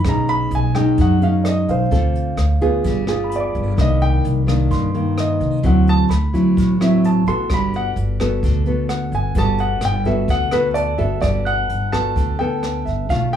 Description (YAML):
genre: bossa nova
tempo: 129 BPM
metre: 4/4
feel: straight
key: G major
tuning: A4 = 439 Hz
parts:
  - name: warm grand piano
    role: melody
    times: 0.0-13.4 s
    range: B4 to C6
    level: -23 LUFS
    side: equal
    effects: none
  - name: nylon-string guitar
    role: accompaniment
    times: 0.0-13.4 s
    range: G2 to A4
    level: -20 LUFS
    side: equal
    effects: none
  - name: upright bass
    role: bass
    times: 0.0-13.4 s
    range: G1 to G2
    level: -20 LUFS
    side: equal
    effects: none
  - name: jazz brush drum kit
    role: drums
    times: 0.0-13.4 s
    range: hi-hat, kick drum, rim click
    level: -25 LUFS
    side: equal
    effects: none
  - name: tine electric piano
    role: accompaniment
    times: 1.7-13.3 s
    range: F5 to F#6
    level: -30 LUFS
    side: right 4 dB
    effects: none
room: light reverb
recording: small room ambience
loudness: -16 LUFS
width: side -9 dB against mid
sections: 0.0-11.2 A section; 11.2-13.4 B section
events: grand piano solo 0.0-11.2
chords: 0.1 B69; 1.9 Dm7; 2.8 G7b9; 3.8 Cm9; 5.6 D9; 7.5 Gmaj9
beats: | 0.05 0.52 0.98 1.45 | 1.91 2.38 2.84 3.31 | 3.77 4.24 4.70 5.17 | 5.63 6.10 6.56 7.03 | 7.49 7.96 8.42 8.89 | 9.36 9.82 10.29 10.75 | 11.22 11.69 12.15 12.62 | 13.09